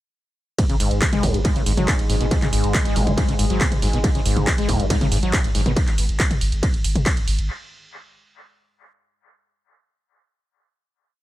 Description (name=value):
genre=driving peak-time techno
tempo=139 BPM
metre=4/4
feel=straight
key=unclear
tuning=A4 = 436 Hz
part: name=overdriven acid bass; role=riff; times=0.6-5.7 s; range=F#2 to G#3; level=-24 LUFS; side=left 1 dB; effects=lush chorus, sidechain pumping, tape echo
part: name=analog drone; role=drone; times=1.3-5.8 s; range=G#2 to G#3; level=-29 LUFS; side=left 1 dB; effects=chorus, sidechain pumping
part: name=electronic kick drum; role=drums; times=0.6-7.1 s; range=none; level=-21 LUFS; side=equal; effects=none
part: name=punchy analog drum machine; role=drums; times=0.6-7.5 s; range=handclaps, hi-hat, ride cymbal, toms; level=-25 LUFS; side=equal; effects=sidechain pumping on hats, sidechain pumping on cymbals, sidechain pumping on toms, dub echo
part: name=saturated sub bass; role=bass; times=0.7-7.5 s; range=G#1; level=-23 LUFS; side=equal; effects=overdrive, sidechain pumping, low-pass filter
room=digital ambience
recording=echo-heavy mix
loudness=-18 LUFS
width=side -15 dB against mid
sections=0.6-7.5 drop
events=drop 0.6-7.5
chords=none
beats=| 0.59 1.02 1.45 1.88 | 2.31 2.74 3.18 3.61 | 4.04 4.47 4.90 5.33 | 5.77 6.20 6.63 7.06